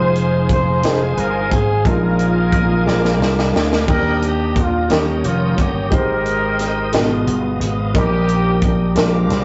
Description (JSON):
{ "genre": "slow gospel", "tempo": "59 BPM (dotted quarters)", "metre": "6/8", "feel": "straight", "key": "Eb major", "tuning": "A4 = 442 Hz", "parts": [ { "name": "warm horn section", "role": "melody", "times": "0.0-9.4 s", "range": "Bb3 to C5", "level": "-23 LUFS", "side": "equal", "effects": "none" }, { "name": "warm baby grand piano", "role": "accompaniment", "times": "0.0-9.4 s", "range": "Ab2 to D5", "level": "-25 LUFS", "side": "equal", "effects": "none" }, { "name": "bright tonewheel organ", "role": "sustained chords", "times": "0.0-9.4 s", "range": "Cb4 to Eb6", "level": "-29 LUFS", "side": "equal", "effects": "slow rotary speaker, overdrive, chorus vibrato" }, { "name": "vintage slap bass", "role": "bass", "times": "0.0-9.4 s", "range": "F1 to Eb2", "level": "-21 LUFS", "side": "equal", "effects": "none" }, { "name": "crisp fusion drum kit", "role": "drums", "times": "0.2-9.4 s", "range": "crash cymbal, hi-hat, kick drum, snare drum", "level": "-22 LUFS", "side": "equal", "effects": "none" } ], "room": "wet small room reverb, RT60 0.5 s", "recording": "rough rehearsal-room recording, nothing above 7.9 kHz", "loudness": "-17 LUFS", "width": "mono", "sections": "0.0-9.4 A section", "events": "drum fill 2.9-3.9", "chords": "0.0 Fm7; 1.8 Bb7sus4; 2.9 Bb7; 3.9 Ebmaj7; 4.9 Eb7; 5.9 Abmaj7; 6.9 Abm6; 7.9 Eb/Bb" }